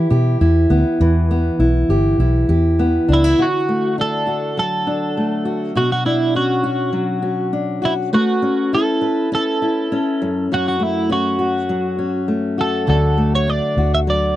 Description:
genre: acoustic pop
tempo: 101 BPM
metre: 4/4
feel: straight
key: D major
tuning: A4 = 440 Hz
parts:
  - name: twelve-string electric guitar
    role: melody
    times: 0.0-14.4 s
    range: E4 to E5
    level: -20 LUFS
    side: right 2 dB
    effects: none
  - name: fingerpicked steel-string acoustic guitar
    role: accompaniment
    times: 0.0-14.4 s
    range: F#2 to B4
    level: -18 LUFS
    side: left 1 dB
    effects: none
  - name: vintage muted fingered electric bass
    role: bass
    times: 0.0-3.3, 12.9-14.4 s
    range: G1 to B2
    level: -16 LUFS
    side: equal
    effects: none
room: light reverb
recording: dry, close 1970s-style studio recording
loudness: -15 LUFS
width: side -14 dB against mid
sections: 0.0-1.0 A section; 1.0-3.4 B section; 3.4-14.4 C section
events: none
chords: 0.0 Em; 3.4 D; 5.8 Bmadd9; 8.1 Aadd9; 10.2 F#m; 12.9 D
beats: 0.41 | 1.00 1.60 2.19 2.79 | 3.38 3.97 4.57 5.16 | 5.75 6.35 6.94 7.54 | 8.13 8.73 9.32 9.91 | 10.51 11.10 11.70 12.29 | 12.88 13.48 14.07

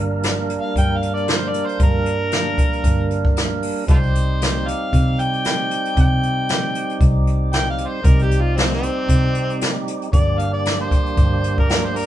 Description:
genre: straight-eighth soul blues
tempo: 115 BPM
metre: 4/4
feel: swing 56% on 16ths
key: G minor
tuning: A4 = 439 Hz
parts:
  - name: tonewheel organ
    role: accompaniment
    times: 0.0-12.1 s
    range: G3 to Bb4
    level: -25 LUFS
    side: right 4 dB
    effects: slow rotary speaker
  - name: vintage muted fingered electric bass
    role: bass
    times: 0.0-12.0 s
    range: G1 to C3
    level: -21 LUFS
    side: equal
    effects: none
  - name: jazz brush drum kit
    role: drums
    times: 0.2-12.1 s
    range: hi-hat, kick drum, snare drum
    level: -19 LUFS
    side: equal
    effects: none
  - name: overdriven harmonica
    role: melody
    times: 0.6-12.1 s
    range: C4 to G5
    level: -24 LUFS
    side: left 2 dB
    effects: none
room: light reverb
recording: band playing live in one room, nothing above 10.8 kHz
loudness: -16 LUFS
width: side -12 dB against mid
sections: 0.0-12.1 A section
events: harmonica solo 0.0-12.1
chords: 0.0 Gm; 3.9 Cm; 10.1 Gm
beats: 0.23 0.76 1.28 | 1.80 2.32 2.84 3.36 | 3.88 4.41 4.93 5.45 | 5.97 6.49 7.01 7.53 | 8.05 8.57 9.09 9.61 | 10.13 10.65 11.17 11.69

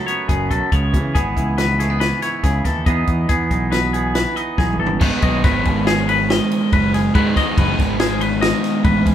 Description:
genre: math rock and midwest emo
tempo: 140 BPM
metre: 5/4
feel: straight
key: unclear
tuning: A4 = 441 Hz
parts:
  - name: twangy electric guitar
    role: accompaniment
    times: 0.0-5.0 s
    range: E2 to G#4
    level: -24 LUFS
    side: right 4 dB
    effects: none
  - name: twangy electric guitar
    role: arpeggios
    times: 0.0-9.1 s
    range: G#4 to D#5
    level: -22 LUFS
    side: left 5 dB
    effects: tremolo
  - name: compact cocktail drum kit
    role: drums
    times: 0.1-9.1 s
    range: crash cymbal, hi-hat, kick drum, ride cymbal, snare drum, toms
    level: -20 LUFS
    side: equal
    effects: none
  - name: growling fingered electric bass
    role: bass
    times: 0.3-9.1 s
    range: F#1 to C#3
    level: -22 LUFS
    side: equal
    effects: overdrive
  - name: crunchy overdriven guitar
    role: riff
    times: 5.0-9.1 s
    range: G#2 to D#4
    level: -19 LUFS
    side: right 1 dB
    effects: none
room: wet large studio reverb, RT60 0.9 s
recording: band playing live in one room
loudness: -15 LUFS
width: side -10 dB against mid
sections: 0.0-5.0 A section; 5.0-9.1 B section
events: drum fill 4.6-5.0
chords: 0.0 F#madd9; 0.7 C#m7; 2.9 Emaj7; 5.0 G#m7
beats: 0.29 | 0.72 1.15 1.58 2.01 2.44 | 2.87 3.30 3.73 4.15 4.58 | 5.01 5.44 5.87 6.29 6.72 | 7.14 7.57 8.00 8.42 8.85

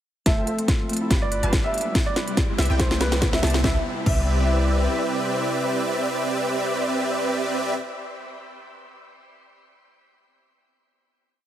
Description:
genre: future bass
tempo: 142 BPM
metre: 4/4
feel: swing 54% on 16ths, half-time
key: C major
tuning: A4 = 439 Hz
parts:
  - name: warm baby grand piano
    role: melody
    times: 0.3-7.7 s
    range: B4 to E5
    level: -31 LUFS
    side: right 2 dB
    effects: sidechain pumping, dub echo
  - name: airy breathy pad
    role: sustained chords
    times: 0.3-7.3 s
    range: C3 to E5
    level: -32 LUFS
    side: left 2 dB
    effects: chorus, sidechain pumping
  - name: Celtic harp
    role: arpeggios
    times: 0.3-7.2 s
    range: A3 to D5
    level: -32 LUFS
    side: equal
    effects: sidechain pumping, low-pass filter, dub echo
  - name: wide unison pluck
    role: arpeggios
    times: 0.3-7.7 s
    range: E5 to B5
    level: -38 LUFS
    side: right 1 dB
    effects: none
  - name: supersaw chords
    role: riff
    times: 0.3-7.7 s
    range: G3 to B5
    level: -26 LUFS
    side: right 1 dB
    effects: analog chorus, sidechain pumping, low-pass filter, dub echo
  - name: warm 808-style bass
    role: bass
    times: 0.3-4.9 s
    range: F1 to C2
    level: -23 LUFS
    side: equal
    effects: sidechain pumping
  - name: electronic kick drum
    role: drums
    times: 0.3-4.2 s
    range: none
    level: -22 LUFS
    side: equal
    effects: small room reverb
  - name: trap drum kit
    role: drums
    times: 0.3-4.2 s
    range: crash cymbal, hi-hat, snare drum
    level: -27 LUFS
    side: equal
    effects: small room reverb
  - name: riser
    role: sound effects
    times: 1.7-3.6 s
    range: none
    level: -35 LUFS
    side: equal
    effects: none
room: light reverb, digital ambience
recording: heavily compressed radio sound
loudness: -20 LUFS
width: side -11 dB against mid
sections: 0.3-3.6 build; 3.6-7.0 final chord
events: build-up 0.3-3.6; drum fill 0.3-3.6; filter sweep on harp 0.3-3.6; riser 1.7-3.6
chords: 0.3 Fmaj7; 1.1 G7; 1.7 Cmaj7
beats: | 0.26 0.68 1.11 1.53 | 1.95 2.37 2.80 3.22 | 3.64 4.06 4.49 4.91 | 5.33 5.75 6.18 6.60

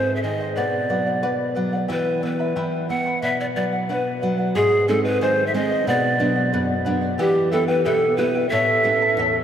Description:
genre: andean folk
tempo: 91 BPM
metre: 2/4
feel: straight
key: B minor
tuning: A4 = 441 Hz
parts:
  - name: breathy large pan pipes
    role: melody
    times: 0.0-9.4 s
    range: G4 to F#5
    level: -21 LUFS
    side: equal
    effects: none
  - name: charango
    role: accompaniment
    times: 0.0-9.4 s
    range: E4 to B5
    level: -27 LUFS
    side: left 2 dB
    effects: none
  - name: nylon-string guitar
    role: accompaniment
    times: 0.0-9.4 s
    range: E2 to B4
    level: -24 LUFS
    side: right 2 dB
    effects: none
  - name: breathy bright large quena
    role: second line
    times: 8.5-9.4 s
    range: A4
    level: -25 LUFS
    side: right 1 dB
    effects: none
room: wet cathedral reverb, RT60 6.1 s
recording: in a vast, echoing space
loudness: -18 LUFS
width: side -9 dB against mid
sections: 0.0-4.5 A section; 4.5-9.4 A section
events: none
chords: 0.0 G#; 0.6 Bm; 1.9 Em; 3.2 Bm; 4.5 G#; 5.9 Bm; 7.2 Em; 8.5 A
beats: | 0.57 1.23 | 1.90 2.56 | 3.22 3.89 | 4.55 5.21 | 5.87 6.53 | 7.20 7.86 | 8.52 9.18

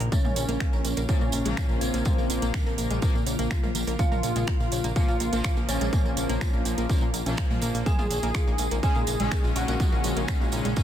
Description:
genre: melodic techno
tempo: 124 BPM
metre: 4/4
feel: straight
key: Bb minor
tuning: A4 = 438 Hz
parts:
  - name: evolving wavetable pad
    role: sustained chords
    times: 0.0-10.8 s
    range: Db3 to Bb4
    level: -34 LUFS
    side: equal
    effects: chorus, built-in reverb, sidechain pumping
  - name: analog pluck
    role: arpeggios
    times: 0.0-10.8 s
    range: F3 to Db6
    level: -34 LUFS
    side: equal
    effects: chorus, sidechain pumping, tape echo
  - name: fat analog bass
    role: bass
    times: 0.0-10.7 s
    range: Bb1 to Bb2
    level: -30 LUFS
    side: equal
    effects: sidechain pumping
  - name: house drum kit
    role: drums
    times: 0.0-10.8 s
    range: finger snaps, hi-hat, toms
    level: -35 LUFS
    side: right 3 dB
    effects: sidechain pumping on hats, sidechain pumping on toms, soft clipping on snare
  - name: fat analog lead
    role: melody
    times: 0.1-10.2 s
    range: C4 to Ab4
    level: -33 LUFS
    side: equal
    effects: wide subtle chorus, sidechain pumping, digital delay
  - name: dark detuned synth bell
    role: second line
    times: 0.1-10.2 s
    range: C5 to Ab5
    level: -38 LUFS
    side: right 2 dB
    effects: chorus, phaser, sidechain pumping, tape echo
  - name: electronic kick drum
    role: drums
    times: 0.1-10.8 s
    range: none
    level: -25 LUFS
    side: equal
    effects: none
  - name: tambourine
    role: percussion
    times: 0.1-10.8 s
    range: none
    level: -38 LUFS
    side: right 5 dB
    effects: none
  - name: analog synth brass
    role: stabs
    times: 1.1-10.8 s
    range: Bb2 to Db4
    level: -33 LUFS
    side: left 3 dB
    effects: chorus, sidechain pumping, tape echo
room: digital ambience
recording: dense, heavily limited modern master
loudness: -23 LUFS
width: side -10 dB against mid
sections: 0.0-10.8 A section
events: none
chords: 0.0 Bbm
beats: | 0.12 0.60 1.09 1.57 | 2.06 2.54 3.02 3.51 | 3.99 4.48 4.96 5.44 | 5.93 6.41 6.89 7.38 | 7.86 8.35 8.83 9.31 | 9.80 10.28 10.77

